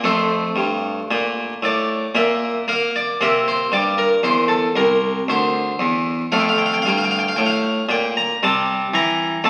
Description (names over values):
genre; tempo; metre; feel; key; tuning
classical, baroque-style suite movement for harpsichord; 57 BPM; 3/4; rubato; F major; A4 = 441 Hz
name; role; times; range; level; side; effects
harpsichord; solo; 0.0-9.5 s; C2 to Bb5; -19 LUFS; equal; none
room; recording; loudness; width
wet recital hall reverb, RT60 1.7 s; very old 78 rpm record, vinyl crackle; -19 LUFS; mono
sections
0.0-9.5 A section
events
none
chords
0.0 F; 2.1 N.C.; 3.2 C7; 6.3 F; 8.4 C7